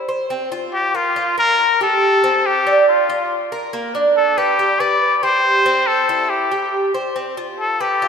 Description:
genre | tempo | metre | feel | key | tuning
latin | 140 BPM | 4/4 | straight | F major | A4 = 440 Hz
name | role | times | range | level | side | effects
Cuban tres | arpeggios | 0.0-8.1 s | Bb3 to C5 | -19 LUFS | right 2 dB | none
trumpet with straight mute | melody | 0.7-8.1 s | F4 to D5 | -16 LUFS | left 2 dB | analog delay
room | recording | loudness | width
wet lush hall reverb, RT60 2.5 s | dreamy mix soaked in reverb | -14 LUFS | side -6 dB against mid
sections
0.3-8.1 A section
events
none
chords
0.3 F5; 1.2 Bb5; 2.0 C5; 2.9 Dm; 3.7 Bb; 4.6 G; 5.4 C; 7.2 F5

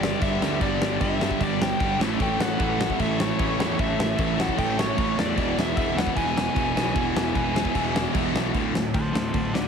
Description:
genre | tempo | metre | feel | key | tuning
punk rock | 151 BPM | 4/4 | straight | unclear | A4 = 439 Hz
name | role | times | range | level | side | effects
biting lead guitar | melody | 0.0-9.7 s | F#4 to G#5 | -29 LUFS | left 1 dB | overdrive
overdriven electric guitar | riff | 0.0-8.5 s | E2 to A4 | -31 LUFS | left 1 dB | none
sludgy distorted guitar | riff | 0.0-9.7 s | D2 to A3 | -28 LUFS | right 14 dB | overdrive
tight distorted guitar | riff | 0.0-9.7 s | D2 to A3 | -30 LUFS | left 15 dB | distortion
fuzz picked electric bass | bass | 0.0-9.7 s | D1 to E2 | -30 LUFS | equal | overdrive
big rock drum kit | drums | 0.0-9.6 s | crash cymbal, kick drum, snare drum | -27 LUFS | left 1 dB | none
room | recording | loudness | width
little or no reverb | heavily compressed radio sound | -21 LUFS | side -6 dB against mid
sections
0.0-8.6 A section; 8.6-9.7 B section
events
lead electric guitar solo 8.6-9.7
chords
0.0 G; 2.0 A; 5.4 E; 8.6 D5

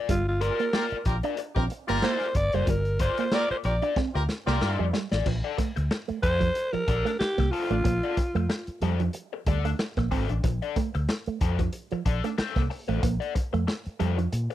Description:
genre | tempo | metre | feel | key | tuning
funk | 93 BPM | 4/4 | swing 56% on 16ths | unclear | A4 = 440 Hz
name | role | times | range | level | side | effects
raw garage guitar | accompaniment | 0.0-14.5 s | D4 to D5 | -33 LUFS | left 9 dB | wah, overdrive
breathy alto saxophone | melody | 0.1-8.8 s | F4 to D5 | -27 LUFS | equal | none
electric guitar with an envelope filter | riff | 0.1-14.4 s | F3 to D4 | -33 LUFS | right 9 dB | spring reverb
vintage muted fingered electric bass | bass | 0.1-14.5 s | F#1 to Bb2 | -27 LUFS | equal | none
crunchy breakbeat drum kit | drums | 0.1-14.5 s | crash cymbal, hi-hat, kick drum, snare drum | -29 LUFS | equal | none
warm horn section | second line | 0.7-4.9 s | F4 to Bb4 | -31 LUFS | equal | none
room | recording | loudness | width
little or no reverb | dry, close 1970s-style studio recording | -24 LUFS | side -13 dB against mid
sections
0.0-5.3 A section; 5.3-14.5 B section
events
alto saxophone solo 0.0-5.3; drum fill 4.0-5.3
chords
0.0 Gm7; 5.3 Bbmaj9

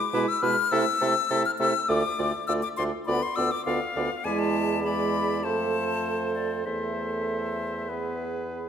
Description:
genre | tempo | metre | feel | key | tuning
quick classical-period movement for wind quintet | 101 BPM | 4/4 | straight | A minor | A4 = 444 Hz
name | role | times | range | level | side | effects
bright silver concert flute | melody | 0.0-8.7 s | D5 to F6 | -28 LUFS | left 6 dB | none
warm oboe | second line | 0.1-8.7 s | A4 to D5 | -32 LUFS | left 2 dB | none
clear clarinet | accompaniment | 0.1-8.7 s | E4 to A4 | -32 LUFS | right 8 dB | none
warm French horn | accompaniment | 0.1-8.7 s | G#3 to B3 | -32 LUFS | equal | none
mellow bassoon | bass | 0.1-8.7 s | D2 to C3 | -31 LUFS | right 2 dB | none
room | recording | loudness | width
moderate scoring stage reverb, RT60 1.9 s | none | -24 LUFS | side -8 dB against mid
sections
0.0-8.7 A section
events
none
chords
0.0 E7/B; 0.7 Am/C; 1.9 Dm; 3.1 Bdim/D; 4.3 E7; 5.4 F; 6.7 Am/E; 7.9 E

